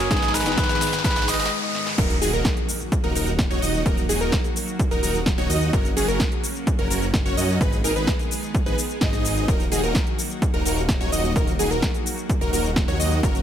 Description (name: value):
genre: EDM, festival progressive house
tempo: 128 BPM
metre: 4/4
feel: straight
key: Eb minor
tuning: A4 = 441 Hz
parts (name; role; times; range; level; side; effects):
- trumpet with cup mute; melody; 0.0-1.5 s; Ab4 to Eb5; -26 LUFS; right 1 dB; ping-pong delay
- felt-muted upright piano; accompaniment; 0.0-2.0 s; Ab2 to Gb4; -30 LUFS; left 4 dB; sidechain pumping, ping-pong delay
- lush unison pad; sustained chords; 0.0-13.4 s; Db3 to Ab4; -31 LUFS; equal; chorus, sidechain pumping
- big supersaw lead; riff; 0.0-13.4 s; Db4 to Eb5; -29 LUFS; right 1 dB; sidechain pumping, ping-pong delay
- detuned saw bass; bass; 0.0-13.4 s; Eb1 to Gb2; -26 LUFS; equal; sidechain pumping
- big-room dance drum kit; drums; 0.0-13.4 s; crash cymbal, hi-hat, shaker, snare drum; -28 LUFS; equal; overdrive, high-pass filter on snare, high-pass filter on perc, high-pass filter on hats, high-pass filter on cymbals, high-pass filter on room
- riser and impact; sound effects; 0.0-3.9 s; none; -30 LUFS; left 2 dB; none
- electronic kick drum; drums; 0.1-13.3 s; none; -23 LUFS; equal; overdrive
- plucky unison lead; arpeggios; 2.0-13.4 s; Ab4 to Eb5; -29 LUFS; equal; sidechain pumping, ping-pong delay
room: light reverb, digital ambience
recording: none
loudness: -19 LUFS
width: side -10 dB against mid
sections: 0.0-2.0 A section; 2.0-13.4 B section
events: build-up 0.0-2.0; drum fill 0.0-1.5, 1.7; riser 0.0-2.0; stop 1.5-2.0; drop 2.0-13.4; impact 2.0-3.9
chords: 0.1 Abm; 2.0 Ebm; 5.7 Gb; 7.6 Abm; 9.5 Ebm